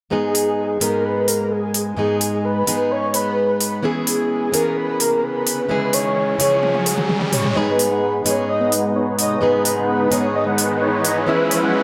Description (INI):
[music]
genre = EDM, festival progressive house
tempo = 129 BPM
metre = 4/4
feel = straight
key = G# minor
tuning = A4 = 439 Hz
[part]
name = breathy flute-like synth lead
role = melody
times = 0.1-11.8 s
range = G#4 to D#5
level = -23 LUFS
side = equal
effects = ensemble chorus, diffuse ambient delay
[part]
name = fingerpicked plugged-in steel-string acoustic guitar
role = accompaniment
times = 0.1-11.8 s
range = G#2 to G#4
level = -24 LUFS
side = equal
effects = diffuse ambient delay
[part]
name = big-room dance drum kit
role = drums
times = 0.3-11.6 s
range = hi-hat, toms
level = -24 LUFS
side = equal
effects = none
[part]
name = riser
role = sound effects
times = 5.1-11.8 s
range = none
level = -30 LUFS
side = equal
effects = none
[part]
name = supersaw chords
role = riff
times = 7.6-11.8 s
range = G#3 to F#5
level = -23 LUFS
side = equal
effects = low-pass filter, diffuse ambient delay
[sound]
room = wet plate reverb, RT60 1.4 s, digital ambience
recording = dreamy mix soaked in reverb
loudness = -19 LUFS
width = mono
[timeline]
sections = 0.1-7.6 A section; 7.6-11.8 B section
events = riser 5.1-7.6, 7.6-11.8; drum fill 6.6-7.6; build-up 7.6-11.8; filter sweep on supersaw synth 7.6-11.8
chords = 0.1 G#m; 3.8 E6; 5.7 C#m; 7.6 G#m; 11.3 E6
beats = | 0.12 0.58 1.05 1.51 | 1.98 2.44 2.91 3.37 | 3.84 4.30 4.77 5.23 | 5.70 6.16 6.63 7.09 | 7.56 8.02 8.49 8.95 | 9.42 9.88 10.35 10.81 | 11.28 11.74